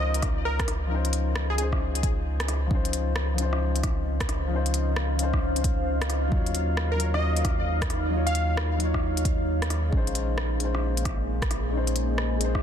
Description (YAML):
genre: future garage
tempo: 133 BPM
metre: 4/4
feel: swing 64% on 16ths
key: unclear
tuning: A4 = 440 Hz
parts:
  - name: plucky unison lead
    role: melody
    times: 0.0-1.7, 6.9-8.6 s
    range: Ab4 to F5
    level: -32 LUFS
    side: equal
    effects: ping-pong delay
  - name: dark upright piano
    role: accompaniment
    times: 0.0-12.6 s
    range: F3 to Db5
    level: -32 LUFS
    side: left 6 dB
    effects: sidechain pumping, low-pass filter, tape echo
  - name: warm sub bass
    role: bass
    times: 0.0-12.6 s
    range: Bb1 to Eb2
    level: -27 LUFS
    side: equal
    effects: tube saturation, sidechain pumping
  - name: organic electronic drum kit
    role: drums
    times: 0.1-12.6 s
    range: hi-hat, rim click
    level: -33 LUFS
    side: left 1 dB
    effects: soft clipping on snare
  - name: electronic kick drum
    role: drums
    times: 0.2-12.6 s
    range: none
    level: -28 LUFS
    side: equal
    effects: none
  - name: deep dark ambient pad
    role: sustained chords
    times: 3.6-12.6 s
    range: Bb3 to F5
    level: -32 LUFS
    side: right 1 dB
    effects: chorus, built-in reverb, sidechain pumping
room: little or no reverb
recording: dense, heavily limited modern master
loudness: -23 LUFS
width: side -9 dB against mid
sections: 0.0-12.6 A section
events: none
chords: 0.0 Dbmaj9; 6.3 Ebm9; 9.9 Bbm11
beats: 0.00 0.45 | 0.90 1.35 1.81 2.26 | 2.71 3.16 3.61 4.06 | 4.51 4.96 5.42 5.87 | 6.32 6.77 7.22 7.67 | 8.12 8.57 9.03 9.48 | 9.93 10.38 10.83 11.28 | 11.73 12.18